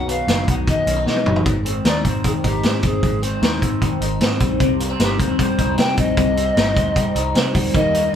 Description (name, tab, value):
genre	jangly indie pop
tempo	153 BPM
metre	4/4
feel	straight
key	unclear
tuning	A4 = 442 Hz
part	breathy polished pan flute	melody	0.0-8.2 s	G4 to G5	-23 LUFS	left 1 dB	none
part	electric guitar through a small old amp	arpeggios	0.0-8.2 s	Ab2 to D#4	-21 LUFS	left 2 dB	phaser
part	vintage muted picked electric bass	bass	0.0-8.1 s	F#1 to C3	-24 LUFS	right 1 dB	none
part	vintage drum kit	drums	0.1-8.0 s	hi-hat, kick drum, snare drum, toms	-20 LUFS	equal	none
part	fingerpicked twelve-string acoustic guitar	accompaniment	7.7-8.2 s	Eb3 to Eb4	-24 LUFS	right 8 dB	none
room	moderate studio reverb, RT60 0.5 s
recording	band playing live in one room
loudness	-16 LUFS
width	side -9 dB against mid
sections	0.0-8.2 A section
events	drum fill 1.1-1.5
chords	0.0 B; 1.5 Ab; 4.6 Cm